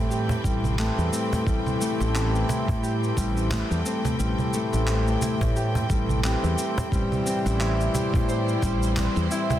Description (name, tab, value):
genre	organic downtempo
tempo	88 BPM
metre	4/4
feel	swing 57% on 16ths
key	A minor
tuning	A4 = 440 Hz
part	hand-pumped harmonium	accompaniment	0.0-9.6 s	E3 to G4	-29 LUFS	left 2 dB	sidechain pumping, tape echo
part	clear chamber string section	sustained chords	0.0-9.6 s	A2 to G5	-33 LUFS	right 2 dB	sidechain pumping
part	Celtic harp	arpeggios	0.0-9.6 s	G3 to C5	-29 LUFS	left 1 dB	tape echo
part	woody fretless electric bass	bass	0.0-9.3 s	A1 to A2	-26 LUFS	equal	tube saturation, wide subtle chorus, sidechain pumping
part	electronic cabasa, congas and handclaps	drums	0.1-9.6 s	none	-31 LUFS	right 2 dB	none
part	cajon	percussion	0.3-9.6 s	none	-31 LUFS	equal	none
part	electronic kick drum	drums	0.4-8.8 s	none	-27 LUFS	equal	none
room	light reverb, small room ambience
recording	dense, heavily limited modern master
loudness	-22 LUFS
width	side -12 dB against mid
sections	0.0-9.6 A section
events	none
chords	0.0 Am7